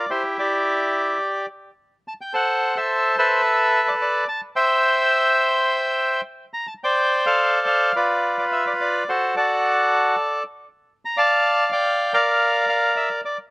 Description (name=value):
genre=tango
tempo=107 BPM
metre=4/4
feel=rubato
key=unclear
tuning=A4 = 440 Hz
part: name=bandoneon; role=solo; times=0.0-13.4 s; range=E4 to Bb5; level=-18 LUFS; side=equal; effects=none
room=little or no reverb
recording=recorded outdoors, with no room sound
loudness=-18 LUFS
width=side -30 dB against mid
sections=0.0-13.5 A section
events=none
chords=0.1 Em7; 1.2 N.C.; 2.3 Am69; 3.4 Asus24; 4.6 C; 6.8 F69; 7.9 Dm69/F; 9.1 D; 10.2 Dm; 12.4 Bb